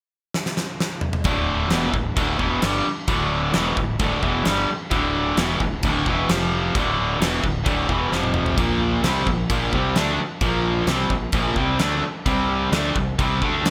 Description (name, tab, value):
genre	hard rock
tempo	131 BPM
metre	4/4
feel	straight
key	D minor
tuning	A4 = 439 Hz
part	huge arena drum kit	drums	0.3-13.7 s	crash cymbal, kick drum, snare drum, toms	-27 LUFS	equal	gated reverb
part	cranked stack guitar	riff	1.2-13.7 s	D2 to D4	-24 LUFS	equal	overdrive
part	fuzz fingered electric bass	bass	1.2-13.7 s	D1 to D2	-30 LUFS	equal	overdrive
room	light reverb, small room ambience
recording	bright 1980s-style digital production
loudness	-22 LUFS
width	mono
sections	0.0-1.3 A section; 1.3-13.7 B section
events	drum fill 0.3-1.3, 8.1-8.6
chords	0.0 N.C.; 1.3 D5; 6.3 F5; 6.7 D5; 8.1 F5; 8.6 Bb5; 12.3 C5